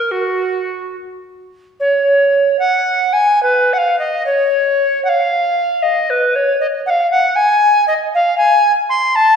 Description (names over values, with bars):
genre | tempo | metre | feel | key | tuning
classical, baroque-style fantasia for unaccompanied recorder | 70-79 BPM (dotted quarters) | 6/8 | rubato | unclear | A4 = 440 Hz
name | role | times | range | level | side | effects
tenor recorder | solo | 0.0-9.4 s | Gb4 to C6 | -12 LUFS | equal | none
room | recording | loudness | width
wet recital hall reverb, RT60 1.5 s | recorded in a church or concert hall | -12 LUFS | side -7 dB against mid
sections
0.0-1.8 A section; 1.8-9.4 A section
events
none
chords
none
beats
| 0.11 0.96 | 1.80 2.61 | 3.45 4.26 | 5.05 5.83 | 6.61 7.38 | 8.15 8.92